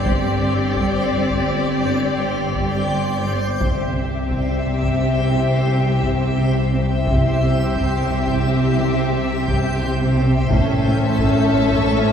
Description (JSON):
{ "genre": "cinematic, suspense film score", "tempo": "87 BPM", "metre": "5/4", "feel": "straight", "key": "unclear", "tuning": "A4 = 440 Hz", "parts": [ { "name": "warm symphonic violin section", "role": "melody", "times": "0.0-12.1 s", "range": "D5 to E5", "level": "-27 LUFS", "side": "left 5 dB", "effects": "none" }, { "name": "warm symphonic violin section", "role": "second line", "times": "0.0-12.1 s", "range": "G4 to A4", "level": "-28 LUFS", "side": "left 2 dB", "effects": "none" }, { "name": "rich symphonic viola section", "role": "accompaniment", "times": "0.0-12.1 s", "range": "C4 to C#4", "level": "-25 LUFS", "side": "left 1 dB", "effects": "none" }, { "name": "backwards swelling texture", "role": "sustained chords", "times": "0.0-12.1 s", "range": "C5 to A5", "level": "-26 LUFS", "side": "left 2 dB", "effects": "built-in reverb" }, { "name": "rich chamber double bass section", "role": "bass", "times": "0.0-12.1 s", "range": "G1 to C2", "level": "-23 LUFS", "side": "right 1 dB", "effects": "none" }, { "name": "bowed-like drone", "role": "drone", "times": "0.0-12.1 s", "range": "G1 to C2", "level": "-27 LUFS", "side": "equal", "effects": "built-in reverb, phaser" }, { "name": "rich symphonic cello section", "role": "riff", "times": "0.1-12.1 s", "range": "G2 to C4", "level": "-27 LUFS", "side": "right 1 dB", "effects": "none" }, { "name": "warm symphonic cello section", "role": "bass", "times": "0.1-12.1 s", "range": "G2 to C3", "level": "-25 LUFS", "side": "right 2 dB", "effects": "none" }, { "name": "solo taiko drums", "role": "drums", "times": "0.1-12.1 s", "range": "none", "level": "-26 LUFS", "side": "equal", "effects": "none" } ], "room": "wet scoring stage reverb, RT60 1.5 s", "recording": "heard from further back in the room", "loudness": "-16 LUFS", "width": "side -8 dB against mid", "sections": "0.0-12.1 A section", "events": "none", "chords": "0.0 Gsus4; 3.6 C; 10.5 A" }